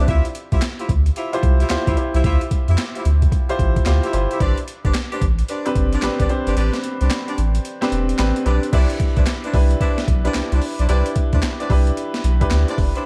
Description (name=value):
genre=R&B, new jack swing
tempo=111 BPM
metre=4/4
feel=swing 63% on 16ths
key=unclear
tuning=A4 = 440 Hz
part: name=clear concert grand piano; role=accompaniment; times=0.0-13.1 s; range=C4 to E5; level=-26 LUFS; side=equal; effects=none
part: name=mellow horn section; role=stabs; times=0.0-13.1 s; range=D4 to E5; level=-30 LUFS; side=equal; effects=none
part: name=round analog bass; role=bass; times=0.0-12.9 s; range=E1 to F2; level=-20 LUFS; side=equal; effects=none
part: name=boom bap sampler-style drum kit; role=drums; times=0.1-13.0 s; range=crash cymbal, handclaps, hi-hat, kick drum, snare drum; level=-24 LUFS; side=equal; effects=overdrive
room=digital ambience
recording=dark, warm production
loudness=-19 LUFS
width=mono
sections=0.0-8.7 A section; 8.7-13.1 B section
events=kick muted 6.6-8.7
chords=0.1 Dm11; 4.4 Am11; 8.7 Cmaj9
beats=| 0.08 0.62 1.16 1.70 | 2.24 2.78 3.32 3.86 | 4.40 4.94 5.49 6.03 | 6.57 7.11 7.65 8.19 | 8.73 9.27 9.81 10.35 | 10.89 11.43 11.97 12.51 | 13.05